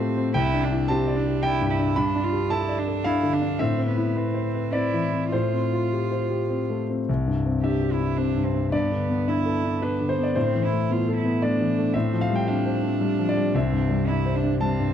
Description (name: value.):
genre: neoclassical piano and strings.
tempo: 111 BPM.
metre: 3/4.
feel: rubato.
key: C major.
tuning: A4 = 440 Hz.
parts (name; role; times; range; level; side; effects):
warm cello; second line; 0.0-14.9 s; B3 to G4; -28 LUFS; right 6 dB; none.
warm concert grand piano; accompaniment; 0.0-14.9 s; C2 to B5; -22 LUFS; left 2 dB; none.
room: wet large studio reverb, RT60 1.3 s.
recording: dark, warm production.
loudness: -21 LUFS.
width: side -9 dB against mid.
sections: 0.0-7.1 A section; 7.1-14.9 B section.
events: none.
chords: 0.3 Cadd9; 2.0 Gadd9; 3.6 Amadd9; 5.3 Fadd9/A; 7.1 Cadd9; 8.7 Gadd9; 10.4 Amadd9; 11.9 Fadd9/A; 13.5 Cadd9.